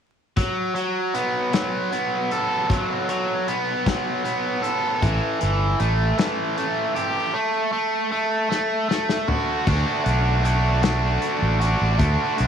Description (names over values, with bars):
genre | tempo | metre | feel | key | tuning
indie rock | 52 BPM (dotted quarters) | 6/8 | straight | unclear | A4 = 440 Hz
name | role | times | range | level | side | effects
biting overdriven guitar | riff | 0.4-12.5 s | E3 to A4 | -22 LUFS | right 1 dB | none
loose indie drum kit | drums | 0.4-12.5 s | crash cymbal, hi-hat, kick drum, snare drum, toms | -26 LUFS | left 2 dB | none
growling fingered electric bass | bass | 5.0-6.1, 9.7-12.5 s | G1 to D2 | -21 LUFS | equal | overdrive
room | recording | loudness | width
light reverb, small room ambience | 1960s-style stereo, vinyl crackle | -20 LUFS | side -8 dB against mid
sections
0.4-9.7 A section; 9.7-12.5 B section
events
drum fill 8.5-9.7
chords
0.4 F#madd11; 5.0 A5; 7.4 F#m/A; 9.7 D6